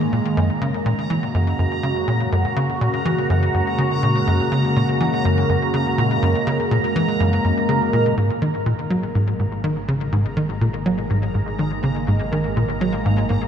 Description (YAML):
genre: ambient, sequencer-driven space music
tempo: 123 BPM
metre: 4/4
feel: straight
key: unclear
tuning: A4 = 440 Hz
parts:
  - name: phased analog pad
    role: sustained chords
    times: 0.0-13.5 s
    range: C#3 to A#4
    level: -22 LUFS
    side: equal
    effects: phaser, chorus
  - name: tight sequencer bass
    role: riff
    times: 0.0-13.4 s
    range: F#2 to F#3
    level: -20 LUFS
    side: equal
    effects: wide subtle chorus, cassette tape, ping-pong delay
  - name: bubbling stepped-filter texture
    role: texture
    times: 0.0-13.5 s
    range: A#5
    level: -29 LUFS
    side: right 2 dB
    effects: chorus, built-in reverb
  - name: wide unison pluck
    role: arpeggios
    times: 8.2-13.5 s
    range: D#3 to G#4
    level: -36 LUFS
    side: left 1 dB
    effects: none
  - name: warm sub bass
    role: bass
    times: 8.2-13.5 s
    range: G#1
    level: -35 LUFS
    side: equal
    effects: none
room: wet cathedral reverb, RT60 6.2 s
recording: in a vast, echoing space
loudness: -18 LUFS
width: side -8 dB against mid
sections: 0.0-8.2 A section; 8.2-13.5 A section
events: fade-in on synth texture 0.0-8.2, 8.2-13.5; fade-in on analog synth pad 8.2-13.5; fade-in on sub bass 8.2-13.5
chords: 0.4 F#add9; 8.2 G#sus2